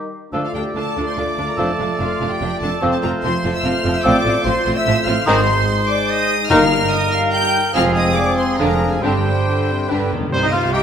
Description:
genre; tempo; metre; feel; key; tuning
quick classical-period movement for symphony orchestra; 145 BPM; 3/4; straight; D minor, C minor from 5.3 s; A4 = 438 Hz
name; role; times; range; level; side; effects
mellow oboe; second line; 0.0-10.8 s; Eb4 to C5; -26 LUFS; equal; none
warm clarinet; second line; 0.0-10.8 s; C4 to G4; -25 LUFS; left 2 dB; none
warm bassoon; accompaniment; 0.0-10.8 s; Eb3 to Eb4; -25 LUFS; right 1 dB; none
warm French horn section; sustained chords; 0.0-10.5 s; G3 to F4; -26 LUFS; left 3 dB; none
rich studio violin section; second line; 0.3-10.8 s; D4 to C5; -28 LUFS; left 2 dB; none
bright studio viola section; accompaniment; 0.3-10.8 s; C3 to G4; -26 LUFS; right 1 dB; none
bright trumpet; stabs; 0.3-10.5 s; Ab4 to D5; -24 LUFS; right 3 dB; none
rich studio double bass section; bass; 0.3-10.8 s; F1 to D2; -26 LUFS; right 3 dB; none
warm studio cello section; bass; 0.3-10.8 s; D2 to C3; -25 LUFS; right 2 dB; none
clear studio violin section; melody; 0.4-10.8 s; Eb5 to G6; -24 LUFS; left 2 dB; none
bright large flute ensemble; second line; 0.4-10.8 s; F4 to G5; -24 LUFS; left 1 dB; none
timpani; percussion; 6.5-7.1, 9.9-10.8 s; G2 to C3; -26 LUFS; left 1 dB; none
room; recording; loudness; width
wet scoring stage reverb, RT60 1.8 s; none; -15 LUFS; side -8 dB against mid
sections
0.3-10.3 A section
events
timpani fill 9.9-10.3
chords
0.3 Dm; 1.6 Dm/F; 2.8 F; 4.0 F/A; 5.3 Ab; 6.5 Eb/G; 7.7 Fm; 8.6 Ddim/F; 9.0 Gsus4; 9.9 G; 10.3 Cm

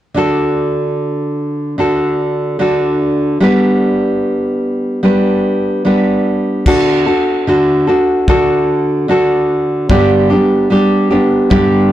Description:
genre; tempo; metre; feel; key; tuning
acoustic pop; 74 BPM; 4/4; swing 60% on 16ths; D major; A4 = 440 Hz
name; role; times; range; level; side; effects
nylon-string guitar; accompaniment; 0.1-11.9 s; G2 to B4; -11 LUFS; equal; none
natural country drum kit; drums; 6.7-11.7 s; crash cymbal, kick drum; -18 LUFS; left 1 dB; none
room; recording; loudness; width
light reverb; blown-out, overdriven recording, overdrive; -11 LUFS; side -13 dB against mid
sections
0.2-6.7 A section; 6.7-11.9 B section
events
none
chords
0.2 D; 3.4 G; 6.7 D; 9.9 G

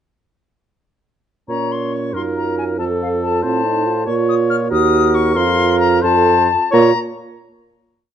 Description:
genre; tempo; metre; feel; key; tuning
quick classical-period movement for wind quintet; 83-95 BPM (dotted quarters); 6/8; rubato; Bb minor; A4 = 443 Hz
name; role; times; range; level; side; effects
silver concert flute; melody; 1.5-7.0 s; F5 to F6; -19 LUFS; left 6 dB; none
mellow oboe; second line; 1.5-6.9 s; A4 to Db5; -22 LUFS; left 2 dB; none
dark clarinet; accompaniment; 1.5-6.9 s; C4 to Gb4; -22 LUFS; right 10 dB; none
dark bassoon; bass; 1.5-6.9 s; Eb2 to Bb2; -19 LUFS; right 2 dB; none
warm French horn; accompaniment; 2.1-6.9 s; Bb3 to A4; -21 LUFS; right 2 dB; none
room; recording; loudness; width
moderate large studio reverb, RT60 1.3 s; dark, warm production, nothing above 10.6 kHz; -14 LUFS; side -9 dB against mid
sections
1.5-6.7 A section; 6.7-8.1 final chord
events
none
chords
1.5 Bbm; 2.8 F7; 4.1 Bbm; 4.7 Ebm; 5.4 Bb5/F; 6.0 F; 6.7 Bb5

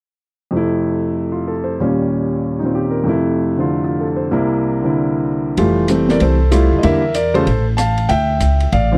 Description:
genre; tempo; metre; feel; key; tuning
jazz piano trio; 191 BPM; 4/4; swing 63% on 8ths; F major; A4 = 441 Hz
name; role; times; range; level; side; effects
warm baby grand piano; melody; 0.5-9.0 s; C2 to A5; -18 LUFS; equal; none
upright bass; bass; 5.6-9.0 s; F1 to E2; -18 LUFS; equal; none
open jazz drum kit; drums; 5.6-8.8 s; hi-hat, ride cymbal, rim click, snare drum; -29 LUFS; equal; none
room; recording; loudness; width
small room ambience; dry, close 1970s-style studio recording; -17 LUFS; mono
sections
0.5-5.6 A section; 5.6-9.0 B section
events
none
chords
0.5 Fmaj7; 1.8 Eb7; 3.1 Fmaj7; 4.3 C7; 5.6 Fmaj9; 6.8 Em7b5; 7.5 Am; 8.1 Dmadd9

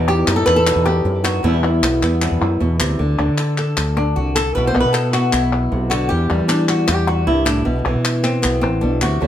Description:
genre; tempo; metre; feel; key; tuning
flamenco; 154 BPM; 4/4; straight; unclear; A4 = 440 Hz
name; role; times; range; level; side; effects
flamenco guitar; melody; 0.0-9.3 s; E2 to C5; -18 LUFS; left 1 dB; tape echo
flamenco guitar; stabs; 0.0-3.0, 9.2-9.3 s; B2 to F#4; -24 LUFS; right 2 dB; none
fretless electric bass; bass; 0.0-9.3 s; A1 to E3; -19 LUFS; equal; none
palmas hand claps; percussion; 0.1-9.2 s; none; -23 LUFS; left 3 dB; none
room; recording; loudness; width
moderate studio reverb, RT60 0.5 s; none; -15 LUFS; side -10 dB against mid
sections
0.0-3.0 A section; 3.0-9.3 B section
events
nylon-string guitar solo 3.0-9.3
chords
0.0 B/E; 1.4 Em; 3.0 D5; 4.5 Bsus4; 6.1 Em; 7.7 Bsus4

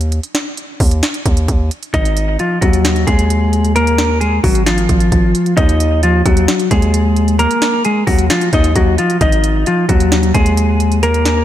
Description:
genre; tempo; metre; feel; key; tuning
hip hop, trap; 132 BPM; 4/4; half-time; unclear; A4 = 442 Hz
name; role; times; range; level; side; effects
distorted 808-style bass; bass; 0.0-11.4 s; Ab1 to Eb2; -15 LUFS; equal; distortion
trap drum kit; drums; 0.0-11.4 s; hi-hat, kick drum, snare drum; -17 LUFS; equal; none
clean electric guitar; melody; 1.9-11.4 s; F3 to Eb5; -14 LUFS; left 1 dB; warbly pitch drift, low-pass filter, tape echo
room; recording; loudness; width
light reverb, digital ambience; none; -11 LUFS; side -12 dB against mid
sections
0.0-11.4 A section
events
break 0.0-1.9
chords
0.0 N.C.; 1.9 Ab5; 5.6 Ebmadd9; 9.2 Ab5

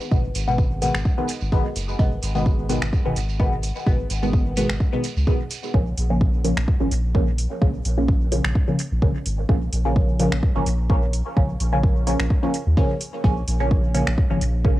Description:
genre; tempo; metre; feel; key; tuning
dub techno; 128 BPM; 4/4; swing 54% on 16ths; Bb phrygian; A4 = 440 Hz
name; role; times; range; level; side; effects
shekere; percussion; 0.0-5.7 s; none; -37 LUFS; right 10 dB; none
filtered dub chord stab; stabs; 0.1-14.8 s; Cb3 to Db4; -24 LUFS; equal; phaser, sidechain pumping, cassette tape, dub echo
soft dub sub bass; bass; 0.1-14.8 s; Gb1 to Eb2; -23 LUFS; equal; sidechain pumping
electronic kick drum; drums; 0.1-14.7 s; none; -20 LUFS; equal; overdrive, studio reverb, cassette tape
soft vintage rhythm box; drums; 0.3-14.5 s; finger snaps, hi-hat; -30 LUFS; right 1 dB; studio reverb, cassette tape, dub echo
room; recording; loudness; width
little or no reverb; home recording on cassette; -19 LUFS; side -16 dB against mid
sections
0.0-5.7 A section; 5.7-14.8 A section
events
filter sweep on synth stab 5.7-14.8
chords
0.0 Abm; 5.7 Bbm

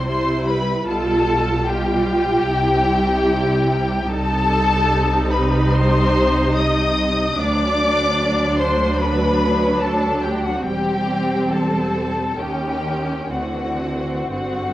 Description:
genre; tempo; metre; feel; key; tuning
classical, slow romantic movement for string orchestra; 57-77 BPM; 4/4; rubato; unclear; A4 = 440 Hz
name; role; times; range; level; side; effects
warm studio violin section; melody; 0.0-14.7 s; F#5 to Eb6; -24 LUFS; left 3 dB; none
rich chamber violin section; second line; 0.0-14.7 s; F#4 to Eb5; -23 LUFS; left 1 dB; none
warm studio viola section; accompaniment; 0.0-14.7 s; D3 to F4; -22 LUFS; right 1 dB; none
rich chamber double bass section; bass; 0.0-14.7 s; E1 to Eb2; -25 LUFS; right 1 dB; none
warm studio cello section; bass; 0.0-14.7 s; D2 to D3; -25 LUFS; right 1 dB; none
room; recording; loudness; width
moderate recital hall reverb, RT60 1.5 s; worn, warbling old tape, cassette tape, warbly pitch drift; -16 LUFS; side -14 dB against mid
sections
0.0-14.7 A section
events
none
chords
0.0 C; 0.9 G7/B; 2.5 C; 4.1 Cm; 7.4 D; 10.7 C/E; 12.4 Eb7; 13.3 D9

